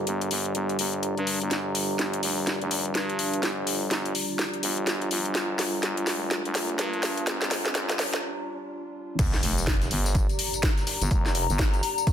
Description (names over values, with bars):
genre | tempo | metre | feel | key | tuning
bass house | 125 BPM | 4/4 | swing 61% on 16ths | G minor | A4 = 436 Hz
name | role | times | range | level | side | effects
dark analog pad | sustained chords | 0.0-12.1 s | G3 to Bb4 | -33 LUFS | equal | chorus, sidechain pumping
growling FM bass | bass | 0.0-11.8 s | F1 to G2 | -30 LUFS | equal | tube saturation, sidechain pumping, high-pass filter
warbly tape-like pad | texture | 0.0-12.1 s | G4 to Bb5 | -33 LUFS | equal | chorus, built-in reverb, sidechain pumping
house drum kit | drums | 0.1-12.1 s | crash cymbal, hi-hat, snare drum, tambourine | -28 LUFS | left 1 dB | overdrive
riser and impact | sound effects | 3.7-11.1 s | none | -37 LUFS | equal | none
electronic kick drum | drums | 9.2-12.1 s | none | -24 LUFS | equal | none
electronic tambourine and snare drum | drums | 9.2-12.1 s | none | -39 LUFS | right 2 dB | none
room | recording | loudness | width
light reverb | dense, heavily limited modern master, high-pass filter | -24 LUFS | side -9 dB against mid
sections
0.0-9.2 A section; 9.2-12.1 B section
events
build-up 0.0-9.2; filter sweep on analog synth pad 0.0-9.2; drum fill 1.5-8.2; break 8.2-9.2; drop 9.2-12.1; impact 9.2-11.1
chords
0.0 Gm